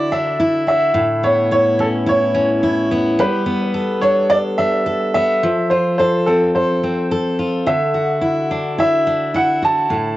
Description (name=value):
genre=pop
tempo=108 BPM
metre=4/4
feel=straight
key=unclear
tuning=A4 = 441 Hz
part: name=bright upright piano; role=melody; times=0.0-10.2 s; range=A4 to A5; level=-17 LUFS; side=right 1 dB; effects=cassette tape, analog delay
part: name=picked steel-string acoustic guitar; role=accompaniment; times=0.0-10.2 s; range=A2 to A4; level=-18 LUFS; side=left 1 dB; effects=none
room=moderate studio reverb, RT60 0.5 s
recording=home recording on cassette, nothing above 7.9 kHz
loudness=-14 LUFS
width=side -15 dB against mid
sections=0.0-10.2 A section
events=none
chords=0.0 Dadd9; 1.0 Aadd9; 3.2 Gadd9; 5.4 F; 7.7 Dadd9